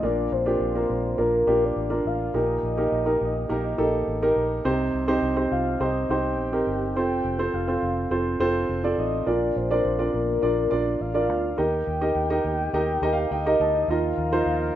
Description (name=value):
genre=piano-driven pop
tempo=104 BPM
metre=4/4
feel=straight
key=unclear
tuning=A4 = 441 Hz
part: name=soft octave-layered synth lead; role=melody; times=0.0-14.7 s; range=Bb4 to G5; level=-28 LUFS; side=left 2 dB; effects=chorus, phaser
part: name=warm grand piano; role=accompaniment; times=0.0-14.8 s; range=Bb2 to A5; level=-23 LUFS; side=right 2 dB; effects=none
part: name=vintage muted fingered electric bass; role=bass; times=0.0-14.7 s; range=F1 to Eb2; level=-30 LUFS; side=left 1 dB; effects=none
part: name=warm brass ensemble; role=sustained chords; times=13.9-14.8 s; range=Eb3 to Bb4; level=-32 LUFS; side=left 2 dB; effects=none
room=wet studio reverb, RT60 0.6 s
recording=rough home demo mix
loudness=-22 LUFS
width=side -12 dB against mid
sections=0.0-13.9 A section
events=grand piano fill 12.7-13.9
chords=0.0 Bb; 2.3 Eb/Bb; 4.7 Cm; 7.0 F; 9.3 Bb; 11.6 Eb; 13.9 Ebsus2